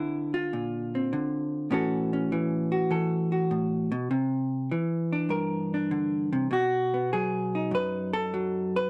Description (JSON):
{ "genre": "solo jazz", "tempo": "100 BPM", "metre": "4/4", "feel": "swing 69% on 8ths, rubato", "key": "unclear", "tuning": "A4 = 445 Hz", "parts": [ { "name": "vintage hollow-body jazz guitar", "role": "solo", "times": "0.0-8.9 s", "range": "F#2 to B4", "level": "-28 LUFS", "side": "equal", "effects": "none" } ], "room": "moderate studio reverb, RT60 0.7 s", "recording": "dark, warm production", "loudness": "-28 LUFS", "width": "mono", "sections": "0.0-8.9 A section", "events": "none", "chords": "0.0 A#add9; 1.7 A6; 4.1 C9; 6.5 B6" }